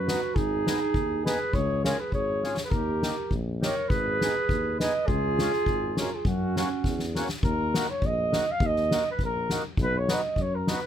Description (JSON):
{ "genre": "alpine folk, alpine dance band", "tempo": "102 BPM", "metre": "2/4", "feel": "straight", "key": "F# major, Eb minor from 7.4 s", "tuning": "A4 = 440 Hz", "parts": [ { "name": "mellow flugelhorn", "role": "melody", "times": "0.0-10.9 s", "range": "F#4 to F5", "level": "-28 LUFS", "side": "right 1 dB", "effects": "none" }, { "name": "dark clarinet", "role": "second line", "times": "0.0-7.1 s", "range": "C#4 to B4", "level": "-33 LUFS", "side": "right 5 dB", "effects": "none" }, { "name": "warm tuba", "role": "bass", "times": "0.0-10.7 s", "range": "G#1 to F#2", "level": "-31 LUFS", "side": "left 1 dB", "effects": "none" }, { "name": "mellow accordion", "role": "accompaniment", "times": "0.1-10.8 s", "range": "G#3 to G#4", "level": "-32 LUFS", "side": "left 1 dB", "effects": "none" }, { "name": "soft-mallet drum kit", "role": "drums", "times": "0.1-10.8 s", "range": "kick drum, snare drum", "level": "-29 LUFS", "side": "left 1 dB", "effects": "none" } ], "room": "little or no reverb", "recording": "close, detailed microphones", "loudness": "-24 LUFS", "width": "side -10 dB against mid", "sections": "0.0-7.4 A section; 7.4-10.9 B section", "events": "drum fill 2.4, 6.8-7.4", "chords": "0.4 G#m; 1.5 C#; 2.7 D#; 3.9 G#m; 5.1 C#; 6.2 F#; 7.4 Ebm; 9.8 B", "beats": "| 0.36 0.95 | 1.54 2.13 | 2.72 3.31 | 3.90 4.49 | 5.08 5.66 | 6.25 6.84 | 7.43 8.02 | 8.61 9.19 | 9.78 10.36" }